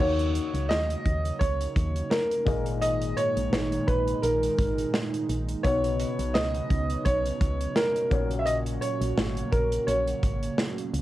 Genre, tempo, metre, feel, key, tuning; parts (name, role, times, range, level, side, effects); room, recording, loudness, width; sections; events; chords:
1980s-style pop; 85 BPM; 4/4; swing 55% on 16ths; A4 = 441 Hz
clear concert grand piano; melody; 0.0-10.5 s; A#4 to E5; -28 LUFS; right 1 dB; cassette tape, plate reverb
warm baby grand piano; accompaniment; 0.0-11.0 s; G#2 to D#5; -33 LUFS; left 5 dB; cassette tape, plate reverb
warm analog pad; sustained chords; 0.0-11.0 s; A#2 to F#4; -34 LUFS; right 5 dB; lush chorus, cassette tape
solid FM bass; bass; 0.0-11.0 s; G#1 to D#2; -30 LUFS; equal
modern studio drum kit; drums; 0.0-11.0 s; crash cymbal, hi-hat, kick drum, snare drum; -29 LUFS; equal; cassette tape
wet booth ambience, RT60 0.2 s; home recording on cassette; -24 LUFS; side -15 dB against mid
0.0-11.0 A section
0.0 D#m7; 2.5 G#sus2; 5.6 Badd9; 8.1 F#